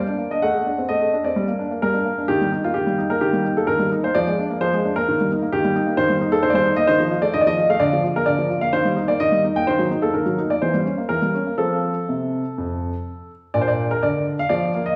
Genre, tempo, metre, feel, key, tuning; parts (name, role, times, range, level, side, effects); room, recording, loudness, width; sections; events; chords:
classical-period piano sonatina; 129 BPM; 4/4; rubato; Bb major from 6.0 s; A4 = 439 Hz
clear baby grand piano; solo; 0.0-15.0 s; F2 to G5; -20 LUFS; equal
wet recital hall reverb, RT60 1.3 s; heard from further back in the room; -20 LUFS; mono
0.0-13.6 A section; 13.6-15.0 B section
0.4 D7/A; 1.4 Gm; 2.3 Eb; 4.1 Bb7/F; 5.1 Eb; 6.9 F7/Eb; 7.8 Bb/D; 8.7 Eb6; 9.7 Ebm6; 10.6 Edim7; 11.6 F; 13.6 Bb